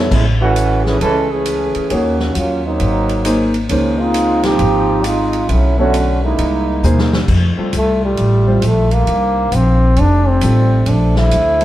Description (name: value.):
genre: jazz, big band swing.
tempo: 134 BPM.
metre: 4/4.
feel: swing 65% on 8ths.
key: F major from 7.3 s.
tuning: A4 = 440 Hz.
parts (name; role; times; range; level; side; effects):
warm grand piano; accompaniment; 0.0-11.6 s; G3 to C#5; -19 LUFS; left 1 dB; none.
upright bass; bass; 0.0-11.6 s; F1 to F2; -16 LUFS; equal; none.
clear trombone section; second line; 0.1-7.1 s; D3 to A4; -16 LUFS; right 2 dB; none.
swinging big-band drum kit; drums; 0.1-11.6 s; crash cymbal, hi-hat, kick drum, ride cymbal, snare drum, toms; -24 LUFS; equal; none.
mellow saxophone section; sustained chords; 7.3-11.6 s; C3 to F4; -26 LUFS; equal; none.
clear trombone; melody; 7.8-11.6 s; G3 to E4; -16 LUFS; equal; none.
room: moderate echo chamber reverb, RT60 1.4 s.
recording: heard from further back in the room.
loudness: -12 LUFS.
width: side -14 dB against mid.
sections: 0.0-7.3 A section; 7.3-11.6 B section.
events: trombone section solo 0.0-7.3; drum fill 6.8-7.3; trombone solo 7.3-11.6.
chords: 0.1 Amaj7; 1.9 D#m7; 2.8 G#9; 3.7 C#maj9; 5.5 Bm9; 6.4 C7alt; 7.3 Fmaj9; 9.1 Cm9; 10.0 F13; 10.9 Bbmaj9.